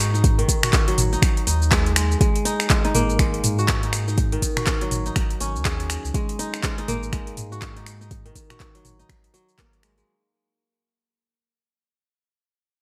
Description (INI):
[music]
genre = afro house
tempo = 122 BPM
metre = 4/4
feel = swing 60% on 16ths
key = unclear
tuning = A4 = 440 Hz
[part]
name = kora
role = arpeggios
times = 0.0-11.5 s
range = D#3 to G#4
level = -29 LUFS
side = equal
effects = vintage 12-bit sampler grit, sidechain pumping, delay
[part]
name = warm sub bass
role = bass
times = 0.0-10.0 s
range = G#1 to G#2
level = -27 LUFS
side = equal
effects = sidechain pumping
[part]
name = afro-pop drum kit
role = drums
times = 0.0-10.1 s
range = finger snaps, handclaps, hi-hat, shaker, toms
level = -26 LUFS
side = equal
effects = overdrive, gated reverb
[part]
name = electronic kick drum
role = drums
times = 0.2-9.7 s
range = none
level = -24 LUFS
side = equal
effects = overdrive
[sound]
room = light reverb, digital ambience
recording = bright 1980s-style digital production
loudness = -21 LUFS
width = mono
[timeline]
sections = 0.0-10.1 A section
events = drop 0.0-10.1; fade-out 2.2-10.1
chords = 0.0 G#m7; 2.2 D#m/G#